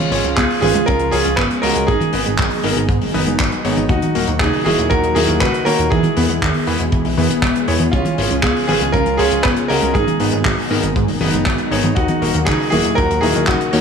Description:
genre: italo disco.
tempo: 119 BPM.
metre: 4/4.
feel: straight.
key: G# minor.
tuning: A4 = 439 Hz.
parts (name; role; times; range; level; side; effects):
clear concert grand piano; melody; 0.0-13.8 s; C#4 to B4; -19 LUFS; right 2 dB; tape echo.
lush unison pad; sustained chords; 0.0-13.8 s; A#2 to G#4; -23 LUFS; equal; chorus, vintage 12-bit sampler grit.
wide unison pluck; arpeggios; 0.1-13.8 s; A#2 to G#4; -24 LUFS; right 3 dB; tape echo.
clear electric grand piano; stabs; 0.1-13.8 s; A#3 to D#5; -24 LUFS; left 4 dB; vintage 12-bit sampler grit.
chorused synth bass; bass; 0.1-13.8 s; D#1 to G#2; -22 LUFS; equal; none.
damped 70s drum kit; drums; 0.1-13.8 s; handclaps, hi-hat, toms; -21 LUFS; left 1 dB; gated reverb.
kick drum; drums; 0.4-13.6 s; none; -20 LUFS; equal; none.
room: light reverb, small room ambience.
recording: studio reverb.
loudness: -14 LUFS.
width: side -6 dB against mid.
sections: 0.0-13.8 A section.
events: none.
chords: 0.0 C#; 1.9 G#m; 3.9 D#m; 5.9 E; 7.9 C#; 9.9 G#m; 12.0 D#m.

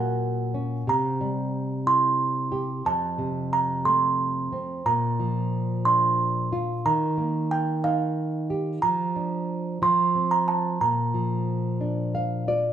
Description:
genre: children's music, lullaby.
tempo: 60 BPM (dotted quarters).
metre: 6/8.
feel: straight.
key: Bb major.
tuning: A4 = 441 Hz.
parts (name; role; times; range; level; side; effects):
music box; melody; 0.0-12.1 s; F5 to C6; -24 LUFS; right 3 dB; none.
nylon-string guitar; accompaniment; 0.0-12.7 s; F2 to F5; -26 LUFS; equal; none.
room: moderate recital hall reverb, RT60 1.3 s.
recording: none.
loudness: -22 LUFS.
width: side -9 dB against mid.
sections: 0.0-12.7 A section.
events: nylon-string guitar fill 11.8-12.7.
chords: 0.0 Gb/Bb; 0.9 C7; 2.9 F; 4.9 Bb; 6.9 Ebadd9; 8.8 Bb/F; 9.8 F5; 10.8 Bb.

